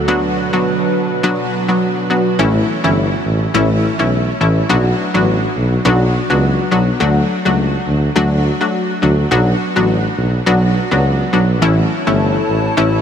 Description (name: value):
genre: dancehall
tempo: 104 BPM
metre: 4/4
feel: swing 56% on 16ths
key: B minor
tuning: A4 = 437 Hz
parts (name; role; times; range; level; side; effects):
- analog pluck; accompaniment; 0.0-13.0 s; E3 to F#4; -15 LUFS; left 1 dB; chorus
- hollow soft pad; sustained chords; 0.0-2.4, 11.9-13.0 s; B2 to A5; -21 LUFS; right 1 dB; chorus
- mellow tuba; bass; 2.4-13.0 s; G1 to D2; -16 LUFS; right 1 dB; none
room: wet huge ambient reverb, RT60 6.6 s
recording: dreamy mix soaked in reverb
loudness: -13 LUFS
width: side -8 dB against mid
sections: 0.0-2.4 A section; 2.4-13.0 B section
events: none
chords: 0.1 Bm; 2.4 A; 4.7 Bm; 7.0 D; 9.3 Bm; 11.6 A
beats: | 0.08 0.66 1.24 1.81 | 2.39 2.97 3.54 4.12 | 4.70 5.27 5.85 6.43 | 7.00 7.58 8.16 8.73 | 9.31 9.89 10.47 11.04 | 11.62 12.20 12.77